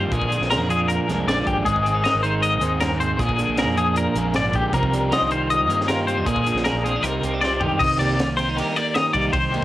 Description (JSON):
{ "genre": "math rock and midwest emo", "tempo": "156 BPM", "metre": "4/4", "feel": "straight", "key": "C minor", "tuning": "A4 = 442 Hz", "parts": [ { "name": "twelve-string electric guitar", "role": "accompaniment", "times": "0.0-9.6 s", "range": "F2 to Bb4", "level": "-24 LUFS", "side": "right 3 dB", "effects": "lush chorus" }, { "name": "twangy electric guitar", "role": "arpeggios", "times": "0.0-9.6 s", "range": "G4 to Eb5", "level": "-22 LUFS", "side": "left 3 dB", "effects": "tremolo" }, { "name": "crunchy overdriven guitar", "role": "riff", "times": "0.0-9.6 s", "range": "Ab2 to Ab4", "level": "-27 LUFS", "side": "equal", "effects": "spring reverb" }, { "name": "fingered electric bass", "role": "bass", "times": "0.0-9.6 s", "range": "Ab1 to G2", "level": "-28 LUFS", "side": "equal", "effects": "none" }, { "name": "crisp fusion drum kit", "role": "drums", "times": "0.1-9.6 s", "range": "crash cymbal, hi-hat, kick drum, ride cymbal, snare drum, toms", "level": "-28 LUFS", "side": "equal", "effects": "none" } ], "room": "little or no reverb", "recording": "home recording on cassette", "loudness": "-18 LUFS", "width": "side -15 dB against mid", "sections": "0.0-7.8 A section; 7.8-9.6 B section", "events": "drum fill 7.4-7.8", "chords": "0.1 Bb7; 1.7 Abmaj7; 3.2 Bb7; 4.7 Cm11; 6.3 Bb7; 7.0 Cm11; 7.8 Cm7", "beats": "| 0.12 0.50 0.89 1.27 | 1.66 2.04 2.43 2.81 | 3.20 3.58 3.96 4.35 | 4.73 5.12 5.50 5.88 | 6.27 6.65 7.03 7.42 | 7.80 8.18 8.57 8.95 | 9.33" }